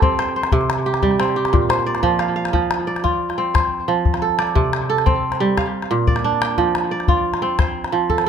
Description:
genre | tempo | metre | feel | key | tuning
west african traditional, West African string and xylophone music | 119 BPM (dotted quarters) | 12/8 | straight | F major | A4 = 440 Hz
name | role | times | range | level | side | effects
kora | arpeggios | 0.0-8.3 s | Bb2 to G5 | -18 LUFS | right 3 dB | tape echo
calabash | percussion | 0.0-8.3 s | none | -21 LUFS | left 3 dB | none
room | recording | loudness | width
light reverb | close, detailed microphones | -16 LUFS | side -7 dB against mid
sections
0.0-2.5 A section; 2.5-8.3 B section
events
none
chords
0.0 F; 0.5 C5; 1.5 Bb; 2.5 F; 4.6 C5; 5.6 Bb; 6.6 F5

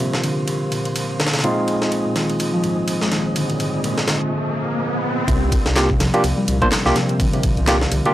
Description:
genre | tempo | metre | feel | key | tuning
breakbeat, breaks | 125 BPM | 4/4 | swing 57% on 16ths | C minor | A4 = 442 Hz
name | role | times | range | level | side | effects
mellow tonewheel organ | sustained chords | 0.0-8.1 s | Bb2 to Eb5 | -26 LUFS | equal | overdrive, fast rotary speaker, sidechain pumping
bright reed electric piano | riff | 0.0-8.1 s | Ab2 to Bb3 | -24 LUFS | equal | overdrive, analog delay
barky tine electric piano | stabs | 0.0-8.1 s | Ab3 to C5 | -22 LUFS | right 1 dB | low-pass filter, analog delay
breakbeat sampler-style drum kit | drums | 0.0-8.0 s | kick drum, ride cymbal, snare drum | -22 LUFS | equal | high-pass filter on cymbals, high-pass filter on snare, high-pass filter on kick
riser | sound effects | 3.2-5.3 s | none | -27 LUFS | equal | none
dark detuned saw bass | bass | 5.3-8.0 s | C2 to C3 | -21 LUFS | equal | none
garage drum kit | drums | 5.3-8.1 s | handclaps, hi-hat | -28 LUFS | equal | none
room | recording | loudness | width
moderate small room reverb, RT60 0.5 s | dry, gritty hardware recording | -17 LUFS | side -14 dB against mid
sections
0.0-5.3 A section; 5.3-8.1 B section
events
filter sweep on reed electric piano 0.0-5.3; riser 3.2-5.3; drop 5.3-8.1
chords
0.0 C9sus4; 1.4 Bb9sus4; 5.3 C9sus4

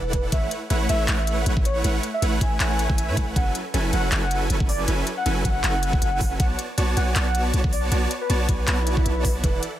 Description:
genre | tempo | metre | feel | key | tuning
future bass | 158 BPM | 4/4 | swing 55% on 16ths, half-time | unclear | A4 = 437 Hz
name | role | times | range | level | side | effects
warm velvety synth lead | melody | 0.0-9.6 s | B4 to G#5 | -29 LUFS | equal | chorus, sidechain pumping, digital delay
supersaw chords | riff | 0.0-9.6 s | E3 to B5 | -27 LUFS | right 1 dB | sidechain pumping
warm 808-style bass | bass | 0.0-9.6 s | E1 to A2 | -24 LUFS | equal | sidechain pumping
electronic kick drum | drums | 0.1-9.5 s | none | -23 LUFS | equal | overdrive, studio reverb
trap drum kit | drums | 0.1-9.7 s | handclaps, hi-hat | -28 LUFS | left 1 dB | studio reverb
swell | sound effects | 8.8-9.4 s | none | -32 LUFS | right 6 dB | none
room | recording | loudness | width
little or no reverb | none | -20 LUFS | side -12 dB against mid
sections
0.0-9.8 A section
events
swell 8.8-9.4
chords
0.3 A69; 3.4 F#m11; 6.4 Bm7

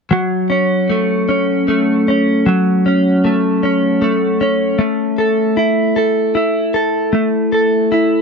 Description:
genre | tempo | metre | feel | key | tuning
pop | 51 BPM (dotted quarters) | 6/8 | straight | F# minor | A4 = 440 Hz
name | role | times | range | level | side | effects
direct-recorded clean electric guitar | accompaniment | 0.1-8.2 s | F#3 to A4 | -13 LUFS | equal | double-tracked left and right
room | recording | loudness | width
light reverb, digital ambience | dry, close 1970s-style studio recording | -13 LUFS | side -5 dB against mid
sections
0.1-8.2 A section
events
none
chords
0.1 F#m; 4.8 A5

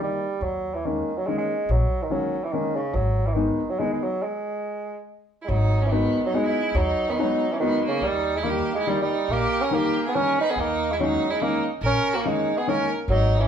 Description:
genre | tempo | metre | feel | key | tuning
musette waltz | 142 BPM | 3/4 | swing 55% on 8ths, rubato | G# minor | A4 = 441 Hz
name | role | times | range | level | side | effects
warm bassoon | melody | 0.0-13.5 s | C#3 to D#4 | -25 LUFS | right 2 dB | none
warm upright piano | accompaniment | 0.0-12.9 s | D#3 to D#4 | -26 LUFS | left 4 dB | none
upright bass | bass | 0.4-3.5, 5.5-13.5 s | G#1 to D#2 | -24 LUFS | equal | none
rich violin | second line | 5.4-13.5 s | A#3 to B4 | -27 LUFS | right 2 dB | none
room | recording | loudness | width
moderate large studio reverb, RT60 0.8 s | band playing live in one room | -21 LUFS | side -8 dB against mid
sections
0.0-5.5 A section; 5.5-13.5 A section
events
stop 4.2-5.5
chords
0.4 D#7sus4; 2.9 G#m; 5.5 G#m7; 8.0 D#; 10.6 D#7sus4

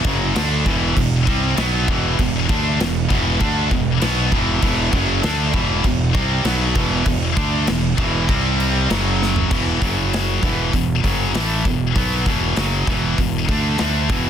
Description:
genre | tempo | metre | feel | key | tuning
heavy metal | 98 BPM | 4/4 | straight | E minor | A4 = 441 Hz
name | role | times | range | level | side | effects
heavy high-gain guitar | riff | 0.0-14.3 s | E2 to D4 | -22 LUFS | left 13 dB | distortion
heavy high-gain guitar | riff | 0.0-9.5 s | E2 to D4 | -26 LUFS | equal | distortion
high-gain distorted guitar | riff | 0.0-14.3 s | E2 to D4 | -23 LUFS | right 13 dB | distortion
fuzz fingered electric bass | bass | 0.0-14.3 s | E1 to D2 | -22 LUFS | equal | overdrive
big rock drum kit | drums | 0.0-14.2 s | crash cymbal, hi-hat, kick drum, snare drum, toms | -22 LUFS | equal | none
room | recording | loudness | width
little or no reverb | dense, heavily limited modern master | -16 LUFS | side -9 dB against mid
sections
0.0-9.5 A section; 9.5-14.3 B section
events
drum fill 9.2-9.5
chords
0.0 Em; 8.3 C5; 8.9 F#5; 9.5 E5; 9.8 F#5; 10.4 E5

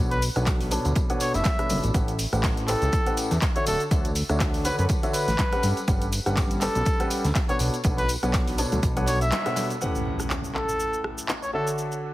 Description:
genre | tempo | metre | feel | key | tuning
piano house | 122 BPM | 4/4 | swing 56% on 16ths | A mixolydian | A4 = 440 Hz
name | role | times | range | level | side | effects
clear upright piano | riff | 0.0-12.1 s | A2 to B5 | -29 LUFS | equal | sidechain pumping, low-pass filter
fat analog bass | bass | 0.0-9.3 s | D1 to G2 | -26 LUFS | equal | sidechain pumping
warm trumpet | melody | 0.1-11.7 s | A4 to E5 | -29 LUFS | equal | ping-pong delay
garage drum kit | drums | 0.1-12.0 s | cabasa, handclaps, hi-hat, rim click | -31 LUFS | equal | none
tambourine and congas | percussion | 0.1-9.8 s | none | -36 LUFS | left 2 dB | none
compact cocktail drum kit | drums | 0.2-9.7 s | hi-hat, snare drum | -40 LUFS | right 3 dB | none
electronic kick drum | drums | 0.5-8.9 s | none | -25 LUFS | equal | overdrive
impact | sound effects | 9.8-11.8 s | none | -33 LUFS | equal | none
room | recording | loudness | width
light reverb, studio reverb | heavily compressed radio sound | -22 LUFS | side -16 dB against mid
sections
0.0-9.8 A section; 9.8-12.1 B section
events
break 9.3-9.8; band accent 9.3; impact 9.8-11.8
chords
0.0 Bm9; 1.9 A13; 3.7 Dmaj9; 5.6 Gmaj9#11; 7.6 Bm9; 9.8 A13; 11.5 Dmaj9

